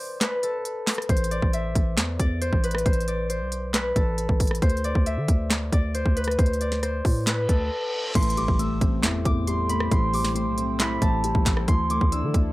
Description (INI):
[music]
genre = hip hop, trap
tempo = 136 BPM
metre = 4/4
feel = half-time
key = A minor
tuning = A4 = 441 Hz
[part]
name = concert harp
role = melody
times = 0.0-12.5 s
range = A4 to E6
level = -28 LUFS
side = equal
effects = none
[part]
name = trap drum kit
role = drums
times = 0.2-12.4 s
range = crash cymbal, handclaps, hi-hat, kick drum, rim click, snare drum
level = -23 LUFS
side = equal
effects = none
[part]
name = growling 808-style bass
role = bass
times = 1.1-12.5 s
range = A1 to D3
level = -27 LUFS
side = equal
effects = none
[part]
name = reverse cymbal and impact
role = sound effects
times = 7.4-9.9 s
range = none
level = -36 LUFS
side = right 1 dB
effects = none
[part]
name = dark concert grand piano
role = accompaniment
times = 8.2-12.5 s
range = A2 to E4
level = -28 LUFS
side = left 2 dB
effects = none
[part]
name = warbly tape-like pad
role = sustained chords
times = 8.7-12.5 s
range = E4 to A5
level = -38 LUFS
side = right 2 dB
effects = chorus, built-in reverb, phaser
[sound]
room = little or no reverb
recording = dry, gritty hardware recording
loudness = -21 LUFS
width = side -18 dB against mid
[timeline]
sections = 0.0-8.2 A section; 8.2-12.5 B section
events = break 0.0-1.1, 7.7-8.2; reverse cymbal 7.4-8.2; impact 8.2-9.9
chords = 0.0 N.C.; 1.1 Am; 4.6 Dsus2; 8.2 Am7; 11.7 Dsus2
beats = 0.21 0.65 | 1.09 1.53 1.98 2.42 | 2.86 3.30 3.74 4.18 | 4.62 5.06 5.50 5.95 | 6.39 6.83 7.27 7.71 | 8.15 8.59 9.03 9.47 | 9.92 10.36 10.80 11.24 | 11.68 12.12